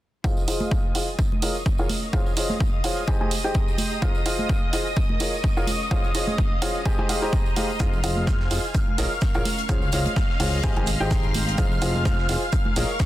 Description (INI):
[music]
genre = piano house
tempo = 127 BPM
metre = 4/4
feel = swing 55% on 16ths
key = F minor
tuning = A4 = 441 Hz
[part]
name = string machine, violins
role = sustained chords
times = 0.2-13.1 s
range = Eb5 to F6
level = -32 LUFS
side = equal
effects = ensemble chorus, sidechain pumping
[part]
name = bright upright piano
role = riff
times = 0.2-12.9 s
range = F4 to Bb5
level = -28 LUFS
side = equal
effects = sidechain pumping, low-pass filter, digital delay
[part]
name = electronic kick drum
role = drums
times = 0.2-13.1 s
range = none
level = -23 LUFS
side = equal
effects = none
[part]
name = tambourine and congas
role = percussion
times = 0.2-13.1 s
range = none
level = -34 LUFS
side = right 3 dB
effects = none
[part]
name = rich studio string section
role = texture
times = 0.2-13.1 s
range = Ab3 to Db6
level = -36 LUFS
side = left 2 dB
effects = sidechain pumping
[part]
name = electronic hi-hat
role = drums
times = 0.5-12.9 s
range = none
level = -31 LUFS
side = right 5 dB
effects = none
[part]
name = fat analog bass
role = bass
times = 7.8-12.8 s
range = F1 to Db2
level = -26 LUFS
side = equal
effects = sidechain pumping
[part]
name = deep reggae drum kit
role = drums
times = 7.8-13.1 s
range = hi-hat, shaker, snare drum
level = -39 LUFS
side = equal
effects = high-pass filter on hats, high-pass filter on snare, high-pass filter on perc, high-pass filter on room
[sound]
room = little or no reverb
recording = dense, heavily limited modern master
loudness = -21 LUFS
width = side -15 dB against mid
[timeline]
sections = 0.2-13.1 A section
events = fade-in on string section 0.2-13.1; filter sweep on upright piano 0.2-13.1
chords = 0.2 Fm7; 1.2 Bbm7; 1.9 Dbmaj7; 3.1 Abmaj7; 4.0 Fm7; 5.0 Bbm7; 5.7 Dbmaj7; 6.9 Abmaj7; 7.8 Fm7; 8.7 Bbm7; 9.5 Dbmaj7; 10.6 Abmaj7; 11.6 Fm7; 12.5 Bbm7